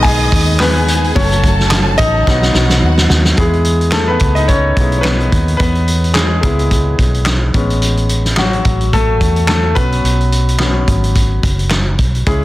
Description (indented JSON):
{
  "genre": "piano-driven pop",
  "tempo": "108 BPM",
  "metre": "4/4",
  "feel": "swing 56% on 16ths",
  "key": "E major",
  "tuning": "A4 = 444 Hz",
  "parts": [
    { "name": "warm studio violin section", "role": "second line", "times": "0.0-3.4 s", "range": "F#4 to D#6", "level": "-20 LUFS", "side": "equal", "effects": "none" },
    { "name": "bright concert grand piano", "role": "accompaniment", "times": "0.0-12.4 s", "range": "D#3 to G#5", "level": "-17 LUFS", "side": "left 2 dB", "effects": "none" },
    { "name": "tonewheel organ", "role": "sustained chords", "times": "0.0-3.4 s", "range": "C#3 to B3", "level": "-23 LUFS", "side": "right 2 dB", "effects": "overdrive, chorus vibrato, slow rotary speaker" },
    { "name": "vintage muted fingered electric bass", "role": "bass", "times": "0.0-12.4 s", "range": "F#1 to E2", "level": "-15 LUFS", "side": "equal", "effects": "none" },
    { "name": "loose indie drum kit", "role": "drums", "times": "0.0-12.4 s", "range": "handclaps, hi-hat, kick drum, snare drum", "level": "-15 LUFS", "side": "equal", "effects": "none" }
  ],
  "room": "small room ambience",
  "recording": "dense, heavily limited modern master",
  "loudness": "-11 LUFS",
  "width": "side -16 dB against mid",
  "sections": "0.0-3.4 A section; 3.4-12.4 B section",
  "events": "grand piano solo 0.0-3.4, 3.4-12.4; drum fill 2.3-3.4",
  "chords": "0.0 G#m; 1.2 F#m; 2.3 B; 3.4 E; 7.5 Amaj7; 9.8 Bsus2"
}